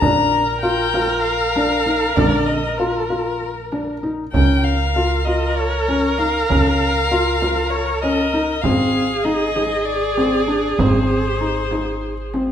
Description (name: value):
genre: contemporary instrumental, chamber music in an uneven meter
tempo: 195 BPM (eighths)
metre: 7/8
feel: straight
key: unclear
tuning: A4 = 440 Hz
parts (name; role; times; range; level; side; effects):
- rich violin; melody; 0.0-12.3 s; Bb4 to Bb5; -22 LUFS; left 6 dB; none
- rich viola; second line; 0.0-12.5 s; Ab4 to Bb4; -22 LUFS; right 2 dB; none
- felt-muted upright piano; arpeggios; 0.0-12.5 s; D3 to F4; -21 LUFS; left 1 dB; none
- upright bass; bass; 0.0-12.5 s; Ab1 to Db2; -24 LUFS; right 2 dB; none
- frame drum; percussion; 0.0-12.5 s; none; -26 LUFS; right 4 dB; none
room: moderate recital hall reverb, RT60 1.5 s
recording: minimal, uncompressed stereo recording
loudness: -16 LUFS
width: side -9 dB against mid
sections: 0.0-12.5 A section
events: none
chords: 0.0 Bb; 4.3 Db; 8.6 Ab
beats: | 0.02 0.32 0.63 0.94 1.25 1.55 1.86 | 2.17 2.48 2.79 3.10 3.41 3.72 4.03 | 4.34 4.65 4.96 5.27 5.58 5.88 6.19 | 6.50 6.81 7.12 7.42 7.73 8.04 8.34 | 8.64 8.95 9.26 9.56 9.87 10.18 10.48 | 10.79 11.10 11.41 11.72 12.03 12.34